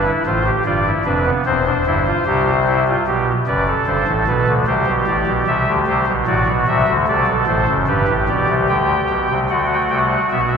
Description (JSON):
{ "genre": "classical, baroque-style 4-part fugue for pipe organ", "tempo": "74 BPM", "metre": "4/4", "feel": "straight", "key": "C major", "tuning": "A4 = 438 Hz", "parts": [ { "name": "pipe organ, soft reed", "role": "solo", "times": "0.0-10.6 s", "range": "E1 to G5", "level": "-15 LUFS", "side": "equal", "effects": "none" } ], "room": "wet church reverb, RT60 2.9 s", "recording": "minimal, uncompressed stereo recording", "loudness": "-15 LUFS", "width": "side -6 dB against mid", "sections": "0.0-9.5 A section; 9.5-10.6 B section", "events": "none", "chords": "0.0 G7; 1.5 C/E; 3.1 G; 4.7 C; 6.3 D7/A; 7.9 G; 9.5 D7" }